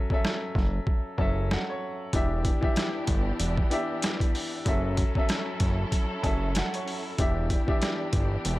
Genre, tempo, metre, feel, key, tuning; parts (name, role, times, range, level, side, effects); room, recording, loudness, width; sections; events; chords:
hip hop, boom-bap hip-hop; 95 BPM; 4/4; swing 57% on 16ths; A4 = 441 Hz
bright upright piano; accompaniment; 0.0-8.6 s; E3 to A5; -31 LUFS; left 2 dB; high-pass filter, low-pass filter
boom bap sampler-style drum kit; drums; 0.1-8.6 s; hi-hat, kick drum, rim click, snare drum; -27 LUFS; equal; overdrive
fat analog bass; bass; 0.6-8.6 s; E1 to G1; -28 LUFS; equal
warm studio string section; sustained chords; 2.1-8.6 s; E3 to A4; -36 LUFS; right 1 dB; high-pass filter, low-pass filter
studio reverb; -25 LUFS; side -18 dB against mid
0.0-8.6 A section
break 0.0-2.1
0.0 F#m7; 2.1 Em7; 4.7 F#m7; 7.2 Em7